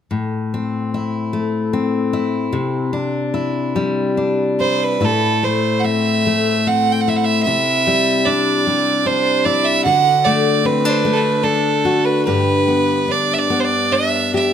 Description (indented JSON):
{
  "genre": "celtic folk, Celtic slow air",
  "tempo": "74 BPM",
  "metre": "3/4",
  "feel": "rubato",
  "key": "A dorian",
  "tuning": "A4 = 439 Hz",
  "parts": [
    { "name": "picked steel-string acoustic guitar", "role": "accompaniment", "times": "0.1-14.5 s", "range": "G2 to G4", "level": "-18 LUFS", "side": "left 3 dB", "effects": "none" },
    { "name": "clear fiddle", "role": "melody", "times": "4.6-14.5 s", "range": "A4 to G5", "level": "-16 LUFS", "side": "right 5 dB", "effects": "none" }
  ],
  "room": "moderate recital hall reverb, RT60 1.7 s",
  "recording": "close, detailed microphones",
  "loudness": "-15 LUFS",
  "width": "side -8 dB against mid",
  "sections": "0.1-5.0 A section; 5.0-14.5 B section",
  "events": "none",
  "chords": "0.1 Am; 2.5 Cadd9; 5.0 Am; 7.5 Cadd9; 9.9 D; 12.3 G"
}